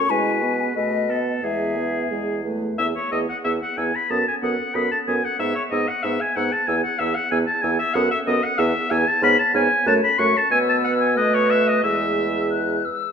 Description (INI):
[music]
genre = quick classical-period movement for wind quintet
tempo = 92 BPM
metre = 2/4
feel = straight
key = E major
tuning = A4 = 440 Hz
[part]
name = hollow concert flute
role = melody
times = 0.0-13.1 s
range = D#5 to F#6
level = -28 LUFS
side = left 8 dB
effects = none
[part]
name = clear oboe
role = second line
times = 0.0-12.5 s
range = G#4 to C#6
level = -22 LUFS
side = left 2 dB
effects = none
[part]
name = mellow French horn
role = accompaniment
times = 0.0-12.8 s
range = G#3 to B3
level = -27 LUFS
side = equal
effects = none
[part]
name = mellow clarinet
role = accompaniment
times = 0.0-12.8 s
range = E4 to C#5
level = -28 LUFS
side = right 6 dB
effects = none
[part]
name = warm bassoon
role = bass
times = 0.0-12.8 s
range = E2 to B2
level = -26 LUFS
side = right 2 dB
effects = none
[sound]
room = wet recital hall reverb, RT60 1.6 s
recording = none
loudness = -18 LUFS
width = side -7 dB against mid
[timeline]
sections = 0.0-2.8 A section; 2.8-13.1 B section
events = none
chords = 0.1 E/B; 0.8 B7; 1.4 E; 4.1 B7(no3)/F#; 5.4 E/G#; 6.7 E; 8.0 B7/F#; 8.6 E; 9.2 C#7(no3)/G#; 9.9 F#m; 10.5 E5/B; 11.2 B5; 11.8 E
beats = | 0.10 0.76 | 1.43 2.11 | 2.79 3.44 | 4.10 4.75 | 5.40 6.04 | 6.68 7.31 | 7.95 8.59 | 9.22 9.87 | 10.51 11.17 | 11.84 12.51